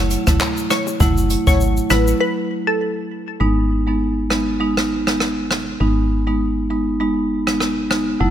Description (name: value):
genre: dancehall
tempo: 100 BPM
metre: 4/4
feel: swing 56% on 16ths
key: G# phrygian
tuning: A4 = 440 Hz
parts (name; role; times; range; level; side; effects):
- glassy wavetable pluck; melody; 0.0-2.8 s; A4 to C#5; -23 LUFS; left 2 dB; chorus, ping-pong delay
- woody FM bass; bass; 0.0-8.3 s; F#1 to A1; -22 LUFS; equal; none
- jazz brush drum kit; drums; 0.1-8.1 s; handclaps, hi-hat, kick drum, rim click, shaker; -20 LUFS; equal; none
- marimba with medium mallets; accompaniment; 0.3-8.3 s; F#3 to E4; -20 LUFS; right 1 dB; none
- bongos; percussion; 0.7-2.1 s; none; -32 LUFS; left 11 dB; none
room: light reverb, small room ambience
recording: none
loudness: -16 LUFS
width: side -10 dB against mid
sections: 0.0-3.4 A section; 3.4-8.3 B section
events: break 2.2-3.4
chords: 0.0 F#m7; 3.4 G#m